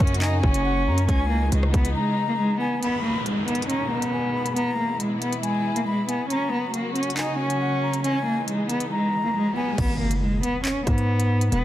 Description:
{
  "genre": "hip hop, drill",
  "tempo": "138 BPM",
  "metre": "4/4",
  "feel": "half-time",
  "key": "G# minor",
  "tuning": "A4 = 439 Hz",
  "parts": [
    { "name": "warm cello", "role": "melody", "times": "0.0-11.6 s", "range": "G#3 to D#4", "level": "-24 LUFS", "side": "equal", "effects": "low-pass filter, tape echo" },
    { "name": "dark symphonic string section", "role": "sustained chords", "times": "0.0-9.8 s", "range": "B2 to F#4", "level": "-31 LUFS", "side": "left 1 dB", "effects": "none" },
    { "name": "distorted 808-style bass", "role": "bass", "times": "0.0-1.9, 9.8-11.6 s", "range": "E1 to G#2", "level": "-22 LUFS", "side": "equal", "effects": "distortion" },
    { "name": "drill drum kit", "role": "drums", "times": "0.0-11.6 s", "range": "crash cymbal, handclaps, hi-hat, kick drum, rim click", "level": "-25 LUFS", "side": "equal", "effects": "none" },
    { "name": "mellow concert flute", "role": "second line", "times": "0.2-9.8 s", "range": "F#5 to B5", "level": "-30 LUFS", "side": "left 4 dB", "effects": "tape echo" },
    { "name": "downlifter, riser and impact", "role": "sound effects", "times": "2.8-11.5 s", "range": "none", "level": "-34 LUFS", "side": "equal", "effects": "none" }
  ],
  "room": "light reverb, studio reverb",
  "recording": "dense, heavily limited modern master, vinyl crackle",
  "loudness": "-21 LUFS",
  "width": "side -13 dB against mid",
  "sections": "0.0-2.8 A section; 2.8-9.8 B section; 9.8-11.6 C section",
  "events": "break 2.0-2.8; riser 8.8-9.8; impact 9.8-11.5",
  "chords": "0.0 F#; 1.1 C#madd9; 2.8 G#m; 4.6 E; 6.3 F#; 8.0 C#madd9; 9.8 G#m"
}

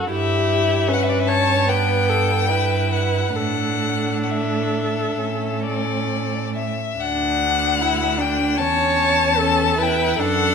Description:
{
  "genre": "classical, slow romantic movement for string quartet",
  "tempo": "64-79 BPM",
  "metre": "4/4",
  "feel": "rubato",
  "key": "unclear",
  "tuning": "A4 = 439 Hz",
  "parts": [
    { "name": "rich violin", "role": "second line", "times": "0.0-10.5 s", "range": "B3 to F#4", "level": "-25 LUFS", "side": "left 3 dB", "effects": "none" },
    { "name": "rich viola", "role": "accompaniment", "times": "0.0-10.5 s", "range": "G4 to C#5", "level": "-23 LUFS", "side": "right 2 dB", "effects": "none" },
    { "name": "clear cello", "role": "bass", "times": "0.0-10.5 s", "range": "D2 to A2", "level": "-24 LUFS", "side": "right 5 dB", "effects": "none" },
    { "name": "rich violin", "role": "melody", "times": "0.1-10.5 s", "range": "D5 to A5", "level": "-22 LUFS", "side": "left 7 dB", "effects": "none" }
  ],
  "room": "moderate recital hall reverb, RT60 1.8 s",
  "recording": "minimal, uncompressed stereo recording",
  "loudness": "-17 LUFS",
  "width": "side -6 dB against mid",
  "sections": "0.0-7.0 A section; 7.0-10.5 A section",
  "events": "none",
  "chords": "0.1 Em/G; 3.4 Asus4; 7.0 D; 8.6 A/E"
}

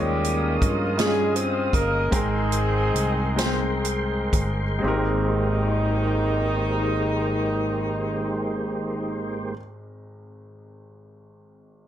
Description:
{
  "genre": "slow gospel",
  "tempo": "38-57 BPM (dotted quarters)",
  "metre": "6/8",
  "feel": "straight",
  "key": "Ab major",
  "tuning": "A4 = 442 Hz",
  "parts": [
    { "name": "mellow horn section", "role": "melody", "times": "0.0-9.5 s", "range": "Eb3 to C5", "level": "-26 LUFS", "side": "equal", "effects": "none" },
    { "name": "bright baby grand piano", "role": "accompaniment", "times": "0.0-11.9 s", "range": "Ab1 to G5", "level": "-29 LUFS", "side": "left 1 dB", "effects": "none" },
    { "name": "tonewheel organ", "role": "sustained chords", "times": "0.0-9.5 s", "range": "Ab3 to Eb6", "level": "-30 LUFS", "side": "right 1 dB", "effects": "slow rotary speaker, overdrive, chorus vibrato" },
    { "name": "fingered electric bass", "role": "bass", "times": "0.0-9.5 s", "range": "G1 to G2", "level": "-27 LUFS", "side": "equal", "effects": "none" },
    { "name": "swinging big-band drum kit", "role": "drums", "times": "0.2-4.6 s", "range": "hi-hat, kick drum, snare drum", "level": "-25 LUFS", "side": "equal", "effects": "none" }
  ],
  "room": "moderate large studio reverb, RT60 0.9 s, studio ambience",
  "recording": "none",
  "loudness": "-21 LUFS",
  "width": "side -11 dB against mid",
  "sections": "0.0-4.8 A section; 4.8-11.2 B section",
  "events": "slowing down 0.0-4.8",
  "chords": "0.0 Eb9sus4; 2.1 Abmaj9"
}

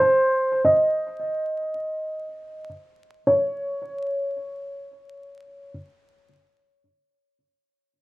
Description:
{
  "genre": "hip hop",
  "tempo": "free time",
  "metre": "none",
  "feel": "none",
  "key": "unclear",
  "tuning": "A4 = 442 Hz",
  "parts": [
    { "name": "felt-muted upright piano", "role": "melody", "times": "0.0-5.7 s", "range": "C5 to Eb5", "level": "-21 LUFS", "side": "equal", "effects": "low-pass filter, analog delay" }
  ],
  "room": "moderate studio ambience, RT60 0.5 s",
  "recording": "vinyl crackle",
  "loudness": "-21 LUFS",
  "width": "side -19 dB against mid",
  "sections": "0.0-3.3 A section; 3.3-6.5 B section",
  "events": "filter sweep on felt piano 0.0-3.3",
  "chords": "none"
}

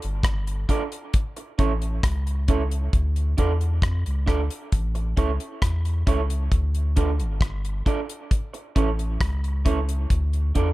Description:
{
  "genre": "roots reggae",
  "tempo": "67 BPM",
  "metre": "4/4",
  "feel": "straight",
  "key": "D harmonic minor",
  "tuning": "A4 = 440 Hz",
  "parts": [
    { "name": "soft dub sub bass", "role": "bass", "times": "0.0-10.7 s", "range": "G1 to F2", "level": "-24 LUFS", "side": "equal", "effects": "none" },
    { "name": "damped 70s drum kit", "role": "drums", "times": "0.0-10.7 s", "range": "hi-hat, kick drum, rim click", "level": "-23 LUFS", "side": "equal", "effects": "none" },
    { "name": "electric guitar through a small old amp", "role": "accompaniment", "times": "0.7-10.7 s", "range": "C#4 to D5", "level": "-30 LUFS", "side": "right 5 dB", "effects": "dub echo" }
  ],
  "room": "small room ambience",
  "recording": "none",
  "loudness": "-22 LUFS",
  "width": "side -18 dB against mid",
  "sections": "0.0-10.7 A section",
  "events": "none",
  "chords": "0.0 N.C.; 1.1 A; 2.9 Dm; 4.7 A; 6.5 Dm; 8.3 A; 10.1 Dm"
}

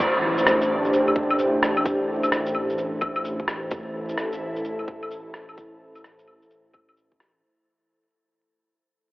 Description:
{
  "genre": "future garage",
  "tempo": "129 BPM",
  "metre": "4/4",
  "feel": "swing 63% on 16ths",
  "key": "A minor",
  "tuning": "A4 = 440 Hz",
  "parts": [
    { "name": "airy breathy pad", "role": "sustained chords", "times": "0.0-7.4 s", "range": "E3 to C5", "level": "-24 LUFS", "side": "equal", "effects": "chorus, sidechain pumping" },
    { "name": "swelling detuned saw bass", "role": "bass", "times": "0.0-7.4 s", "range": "A1", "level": "-33 LUFS", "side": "equal", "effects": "sidechain pumping" },
    { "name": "electronic kick drum", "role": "drums", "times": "0.0-7.2 s", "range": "none", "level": "-27 LUFS", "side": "equal", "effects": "none" },
    { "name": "electronic shaker, rim click and claves", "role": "drums", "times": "0.0-7.3 s", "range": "none", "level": "-26 LUFS", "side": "equal", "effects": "none" },
    { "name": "impact", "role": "sound effects", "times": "0.0-1.9 s", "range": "none", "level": "-37 LUFS", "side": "equal", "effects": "none" }
  ],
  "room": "wet cathedral reverb, RT60 7.0 s",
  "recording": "dreamy mix soaked in reverb, vinyl crackle, telephone sound",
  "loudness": "-21 LUFS",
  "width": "side -19 dB against mid",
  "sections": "0.0-7.4 A section",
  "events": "fade-out 0.0-7.4; impact 0.0-1.9",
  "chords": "0.0 Am7"
}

